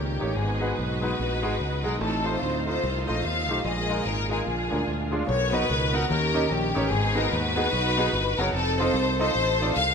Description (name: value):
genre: gospel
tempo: 147 BPM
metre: 4/4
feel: swing 63% on 8ths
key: unclear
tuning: A4 = 440 Hz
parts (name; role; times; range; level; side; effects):
- warm studio string section; melody; 0.0-9.9 s; Bb3 to F5; -26 LUFS; left 2 dB; none
- clear grand piano; accompaniment; 0.0-9.7 s; Ab2 to F#5; -29 LUFS; equal; none
- bright tonewheel organ; sustained chords; 0.0-5.3 s; D3 to G4; -36 LUFS; right 4 dB; slow rotary speaker, chorus vibrato
- dark French horn section; sustained chords; 0.0-5.3 s; F3 to Eb4; -39 LUFS; right 1 dB; none
- fingered electric bass; bass; 0.0-9.9 s; F1 to Eb2; -29 LUFS; right 1 dB; none
room: moderate scoring stage reverb, RT60 1.6 s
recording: none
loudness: -23 LUFS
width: side -6 dB against mid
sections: 0.0-5.3 A section; 5.3-9.9 B section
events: none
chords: 0.4 Abm7; 2.0 F7/A; 3.6 Bb7sus4; 4.5 Bb7; 5.3 Bmaj7; 6.1 Eb7; 6.9 Abm7; 8.5 F7